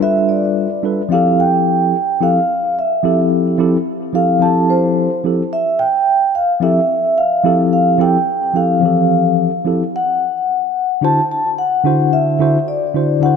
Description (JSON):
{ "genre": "chillout", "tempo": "109 BPM", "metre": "4/4", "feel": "swing 54% on 16ths", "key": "F lydian", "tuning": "A4 = 440 Hz", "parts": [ { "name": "vibraphone with soft mallets", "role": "melody", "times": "0.0-13.4 s", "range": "C5 to A5", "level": "-16 LUFS", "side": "equal", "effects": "ping-pong delay" }, { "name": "mellow tine electric piano", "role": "accompaniment", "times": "0.0-13.4 s", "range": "D3 to C5", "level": "-15 LUFS", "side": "moving between left 3 dB and right 3 dB", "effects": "auto-pan, ping-pong delay" } ], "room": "moderate lush hall reverb, RT60 2.1 s", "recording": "dark, warm production", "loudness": "-13 LUFS", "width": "side -6 dB against mid", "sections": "0.0-1.1 A section; 1.1-13.4 B section", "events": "none", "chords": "0.0 G7; 1.1 Fmaj7; 9.9 D7", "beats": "0.02 0.57 | 1.12 1.67 2.22 2.77 | 3.32 3.87 4.42 4.97 | 5.52 6.07 6.62 7.17 | 7.72 8.28 8.82 9.38 | 9.93 10.48 11.03 11.58 | 12.13 12.68 13.23" }